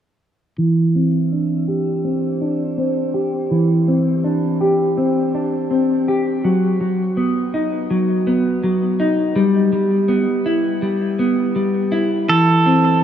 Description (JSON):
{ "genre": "dream pop", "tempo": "82 BPM", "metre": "4/4", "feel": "straight", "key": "C lydian", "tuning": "A4 = 442 Hz", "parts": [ { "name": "semi-hollow electric guitar", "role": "arpeggios", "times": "0.6-13.0 s", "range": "E3 to G4", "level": "-16 LUFS", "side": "equal", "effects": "lush chorus, low-pass filter, shimmer reverb, tape echo" }, { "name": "pedal steel guitar", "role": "melody", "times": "12.3-13.0 s", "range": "A4", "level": "-15 LUFS", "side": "right 4 dB", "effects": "shimmer reverb" } ], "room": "wet plate reverb, RT60 3.7 s", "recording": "none", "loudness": "-16 LUFS", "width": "side -9 dB against mid", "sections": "0.6-12.3 A section", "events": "filter sweep on clean electric guitar 0.6-12.3", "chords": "0.6 Cadd9; 6.4 B; 9.4 Em; 12.3 C" }